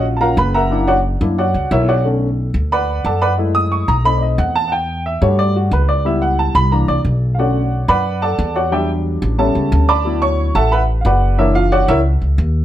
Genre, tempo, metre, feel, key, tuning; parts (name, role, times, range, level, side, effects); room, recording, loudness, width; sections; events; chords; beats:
Afro-Cuban jazz; 180 BPM; 4/4; straight; B minor; A4 = 441 Hz
warm upright piano; accompaniment; 0.0-12.0 s; D3 to D#6; -16 LUFS; equal
upright bass; bass; 0.0-12.6 s; Gb1 to G2; -16 LUFS; equal
light reverb; -13 LUFS; side -12 dB against mid
0.0-2.0 A section; 2.0-12.6 A section
upright piano solo 0.0-12.6
0.0 Ebm9 (rootless); 0.7 Gb7b13; 2.0 Bm9; 3.4 F#m7; 4.0 B7b9; 4.7 Em11; 6.1 C#m7b5; 6.7 C9; 7.4 Bm9; 8.7 Em9; 9.4 A7; 10.1 D69; 11.4 F#7b13
0.04 0.37 | 0.71 1.04 1.38 1.71 | 2.04 2.38 2.71 3.05 | 3.38 3.71 4.05 4.38 | 4.72 5.05 5.38 5.72 | 6.05 6.38 6.72 7.05 | 7.39 7.72 8.05 8.38 | 8.72 9.05 9.38 9.72 | 10.05 10.38 10.72 11.05 | 11.38 11.72 12.05 12.38